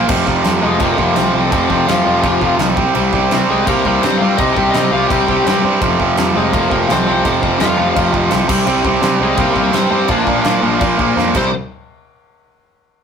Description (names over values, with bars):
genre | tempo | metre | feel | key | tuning
punk rock | 168 BPM | 4/4 | straight | unclear | A4 = 439 Hz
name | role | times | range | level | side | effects
crunchy overdriven guitar | riff | 0.0-11.5 s | F2 to C4 | -20 LUFS | left 9 dB | none
distorted electric guitar | riff | 0.0-11.5 s | F2 to C4 | -15 LUFS | right 4 dB | overdrive
fuzz picked electric bass | bass | 0.0-11.5 s | F1 to C3 | -22 LUFS | left 1 dB | overdrive
big rock drum kit | drums | 0.1-11.4 s | crash cymbal, kick drum, snare drum | -21 LUFS | equal | none
smooth overdriven lead guitar | melody | 0.6-11.5 s | Ab3 to G5 | -19 LUFS | left 5 dB | none
room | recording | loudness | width
light reverb | rough rehearsal-room recording, tube saturation | -12 LUFS | side -7 dB against mid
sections
0.1-11.5 A section; 11.5-13.0 B section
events
drum fill 11.2-11.5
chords
0.1 F5; 2.8 Cm; 5.8 F5; 8.5 C5; 10.1 Bb; 11.4 C5; 11.5 N.C.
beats
| 0.10 0.46 0.82 1.17 | 1.53 1.89 2.25 2.60 | 2.96 3.32 3.68 4.04 | 4.39 4.75 5.11 5.47 | 5.82 6.18 6.54 6.90 | 7.25 7.61 7.97 8.32 | 8.68 9.04 9.39 9.75 | 10.11 10.46 10.82 11.17